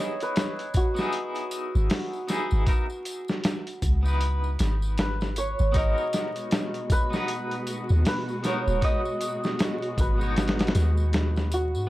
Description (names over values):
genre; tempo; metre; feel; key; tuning
trip hop; 78 BPM; 4/4; swing 60% on 16ths; G# minor; A4 = 438 Hz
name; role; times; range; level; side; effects
santur; melody; 0.0-11.9 s; F#4 to D#5; -31 LUFS; right 1 dB; vintage 12-bit sampler grit, tape echo
clean electric guitar; accompaniment; 0.0-11.9 s; B3 to C#5; -34 LUFS; left 1 dB; tremolo, tape echo
boom bap sampler-style drum kit; drums; 0.2-11.7 s; hi-hat, kick drum, snare drum; -26 LUFS; equal; none
tambourine; percussion; 0.2-11.9 s; none; -43 LUFS; left 2 dB; none
soft 808-style bass; bass; 1.8-11.9 s; D#1 to G#2; -24 LUFS; equal; none
warm studio string section; sustained chords; 5.7-11.9 s; B2 to F#4; -33 LUFS; equal; vintage 12-bit sampler grit
room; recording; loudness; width
little or no reverb; dark, warm production, vinyl crackle; -23 LUFS; side -17 dB against mid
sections
0.0-11.9 A section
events
none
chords
0.0 C#m7; 5.7 G#m7